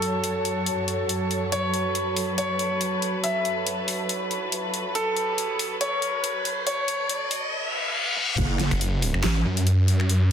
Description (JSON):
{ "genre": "heavy wobble dubstep", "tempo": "140 BPM", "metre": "4/4", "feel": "swing 55% on 16ths, half-time", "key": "F# minor", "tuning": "A4 = 443 Hz", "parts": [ { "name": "clear concert grand piano", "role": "melody", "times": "0.0-7.5 s", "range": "A4 to E5", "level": "-27 LUFS", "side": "left 1 dB", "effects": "dub echo" }, { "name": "muted studio string section", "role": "sustained chords", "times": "0.0-8.3 s", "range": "F#2 to C#5", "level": "-30 LUFS", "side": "equal", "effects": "sidechain pumping" }, { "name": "dubstep drum kit", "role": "drums", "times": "0.0-10.2 s", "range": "crash cymbal, finger snaps, handclaps, hi-hat, snare drum, toms", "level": "-28 LUFS", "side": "left 2 dB", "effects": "none" }, { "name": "airy breathy pad", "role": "texture", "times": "0.0-7.5 s", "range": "F#4 to A5", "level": "-32 LUFS", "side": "right 2 dB", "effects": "chorus, sidechain pumping" }, { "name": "riser and reverse cymbal", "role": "sound effects", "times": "3.2-8.4 s", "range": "none", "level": "-31 LUFS", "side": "left 1 dB", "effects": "none" }, { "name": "wobble bass", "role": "bass", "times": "8.4-9.4 s", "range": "F#1 to A1", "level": "-23 LUFS", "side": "right 1 dB", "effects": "chorus, overdrive" }, { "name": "electronic kick drum", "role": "drums", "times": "8.4-8.5 s", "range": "none", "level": "-28 LUFS", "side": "equal", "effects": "distortion" }, { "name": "snarling distorted saw bass", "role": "bass", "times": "8.7-10.3 s", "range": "F#1 to F#2", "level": "-20 LUFS", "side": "equal", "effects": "distortion, overdrive" } ], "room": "moderate digital room reverb, RT60 1.1 s, digital ambience", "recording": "dense, heavily limited modern master, high-pass filter", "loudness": "-22 LUFS", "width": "side -8 dB against mid", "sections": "0.0-8.4 A section; 8.4-10.3 B section", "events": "build-up 0.0-8.4; filter sweep 0.0-8.4; riser 3.2-8.4; reverse cymbal 7.5-8.4; drum fill 8.2; drop 8.4-10.3", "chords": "0.0 F#m; 8.4 N.C." }